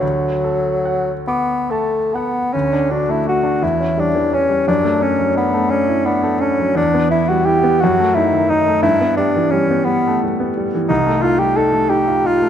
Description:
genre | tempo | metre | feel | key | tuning
classical, romantic duo for bassoon and grand piano | 46-60 BPM (dotted quarters) | 6/8 | rubato | D major | A4 = 440 Hz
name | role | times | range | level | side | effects
warm bassoon | melody | 0.0-12.5 s | F#3 to A4 | -16 LUFS | left 1 dB | none
clear grand piano | accompaniment | 0.0-12.5 s | C2 to D6 | -18 LUFS | equal | none
room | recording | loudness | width
moderate scoring stage reverb, RT60 1.6 s | none | -14 LUFS | side -9 dB against mid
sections
0.0-2.5 A section; 2.5-12.5 B section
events
none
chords
0.0 D; 3.6 C#dim/E; 4.7 D/F#; 6.8 Em; 7.8 D#dim/F#; 8.8 Em/G; 10.9 Am7b5/C

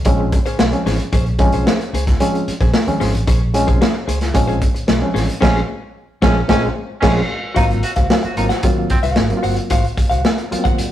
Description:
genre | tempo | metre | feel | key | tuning
funk | 112 BPM | 4/4 | straight | Ab mixolydian | A4 = 441 Hz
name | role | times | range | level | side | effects
vintage muted fingered electric bass | bass | 0.0-10.8 s | G1 to Eb2 | -21 LUFS | equal | none
crunchy breakbeat drum kit | drums | 0.0-10.9 s | crash cymbal, hi-hat, kick drum, snare drum | -17 LUFS | equal | none
clean electric guitar | accompaniment | 0.1-10.8 s | Db4 to Gb5 | -24 LUFS | left 2 dB | none
barky reed electric piano | stabs | 0.1-10.9 s | F3 to F4 | -20 LUFS | equal | overdrive, fast tremolo
bright baritone saxophone | second line | 5.4-9.0 s | C4 to Gb4 | -24 LUFS | right 2 dB | none
room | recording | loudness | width
moderate stone room reverb, RT60 1.0 s | rough rehearsal-room recording, warm saturation | -14 LUFS | side -12 dB against mid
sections
0.0-7.6 A section; 7.6-10.9 B section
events
band accent 5.4-7.6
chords
0.0 Bbm9; 7.6 Ab13

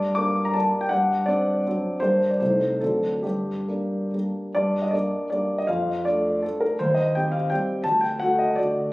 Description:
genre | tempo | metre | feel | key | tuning
classical, romantic triple-time dance for piano with dotted rhythms | 128-178 BPM | 3/4 | rubato | G minor | A4 = 440 Hz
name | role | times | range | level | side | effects
warm grand piano | solo | 0.0-8.9 s | C2 to D6 | -21 LUFS | equal | none
room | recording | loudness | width
moderate recital hall reverb, RT60 1.4 s | recorded on a phone in the room, club reverb, compression | -21 LUFS | side -20 dB against mid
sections
0.0-4.6 A section; 4.6-8.9 A section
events
none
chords
0.0 Gm; 0.9 D7/G; 2.0 Gm; 2.4 Adim/C; 2.8 D7; 3.2 Gm; 5.7 Dm/F; 6.8 Cm/Eb; 7.8 D

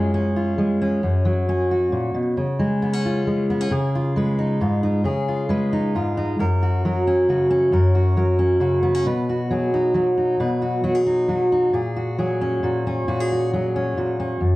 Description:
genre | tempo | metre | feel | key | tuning
folk | 134 BPM | 3/4 | straight | F# major | A4 = 435 Hz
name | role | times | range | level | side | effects
fingerpicked steel-string acoustic guitar | solo | 0.0-14.6 s | F#2 to B4 | -18 LUFS | equal | slapback echo
room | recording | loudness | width
light reverb | worn, warbling old tape, cassette tape, warbly pitch drift | -18 LUFS | side -18 dB against mid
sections
0.0-3.7 A section; 3.7-14.4 B section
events
none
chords
0.0 C#/F#; 1.0 F#; 2.4 C#; 3.7 C#add9; 6.4 F#; 9.1 B; 11.7 F#add9/A#

